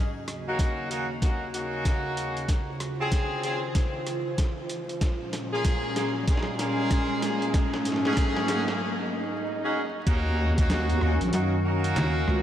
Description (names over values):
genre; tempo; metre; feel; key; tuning
glitch hop; 95 BPM; 4/4; swing 62% on 16ths; unclear; A4 = 440 Hz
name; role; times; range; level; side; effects
warbly tape-like pad; sustained chords; 0.0-12.4 s; Eb2 to C5; -32 LUFS; equal; chorus, built-in reverb, sidechain pumping
riser and swell; sound effects; 0.0-10.1 s; none; -36 LUFS; right 2 dB; none
boom bap sampler-style drum kit; drums; 0.3-12.4 s; hi-hat, rim click, snare drum; -35 LUFS; equal; high-pass filter on hats, high-pass filter on snare
clear horn section; stabs; 0.5-12.4 s; Bb3 to Ab4; -30 LUFS; equal; vintage 12-bit sampler grit, sidechain pumping, diffuse ambient delay
electronic kick drum; drums; 0.6-10.7 s; none; -24 LUFS; equal; none
wobble bass; bass; 10.1-12.4 s; Bb1 to Eb2; -24 LUFS; equal; chorus, tube saturation
slap-like FM bass; bass; 11.3-12.3 s; Eb2 to Gb2; -26 LUFS; equal; none
room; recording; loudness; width
moderate huge ambient reverb, RT60 4.5 s; dreamy mix soaked in reverb, vinyl crackle; -24 LUFS; side -11 dB against mid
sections
0.0-10.1 A section; 10.1-12.4 B section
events
build-up 0.0-10.1; drum fill 0.0-8.8; riser 0.0-8.8; break 8.8-10.1; swell 8.8-10.1; drop 10.1-12.4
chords
0.0 Ebm7; 2.5 Dbmaj7; 5.0 Bbm7; 7.5 Ab7sus4; 10.1 Ebm7